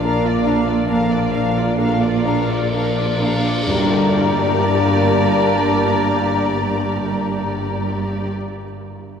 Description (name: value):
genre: cinematic, emotional film score for orchestra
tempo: 44 BPM (dotted quarters)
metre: 6/8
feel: rubato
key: G minor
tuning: A4 = 439 Hz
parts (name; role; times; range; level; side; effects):
- muted symphonic violin section; melody; 0.0-8.3 s; D5 to F5; -26 LUFS; left 3 dB; none
- large flute ensemble; second line; 0.0-8.3 s; Bb5; -27 LUFS; left 2 dB; none
- mellow clarinet; second line; 0.0-8.3 s; D4; -28 LUFS; right 2 dB; none
- muted symphonic violin section; second line; 0.0-8.3 s; Bb4 to D5; -29 LUFS; left 1 dB; none
- dark baby grand piano; accompaniment; 0.0-9.2 s; G2 to Bb5; -24 LUFS; left 1 dB; none
- muted symphonic viola section; accompaniment; 0.0-8.3 s; D4 to G4; -28 LUFS; right 1 dB; none
- mellow French horn section; sustained chords; 0.0-8.3 s; Bb3 to D4; -24 LUFS; left 2 dB; none
- concert harp; arpeggios; 0.0-8.6 s; G2 to Bb5; -30 LUFS; left 6 dB; none
- muted studio cello section; bass; 0.0-8.3 s; G2 to Bb2; -24 LUFS; right 4 dB; none
- muted studio double bass section; bass; 0.0-8.3 s; G1 to Bb1; -24 LUFS; right 2 dB; none
- tam-tam; percussion; 3.7-7.3 s; none; -29 LUFS; equal; none
room: wet church reverb, RT60 3.3 s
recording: minimal, uncompressed stereo recording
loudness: -16 LUFS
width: side -7 dB against mid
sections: 0.0-3.7 A section; 3.7-9.2 B section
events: slowing down 0.0-3.7; band accent 3.7-4.6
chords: 0.0 Bb; 3.7 Gm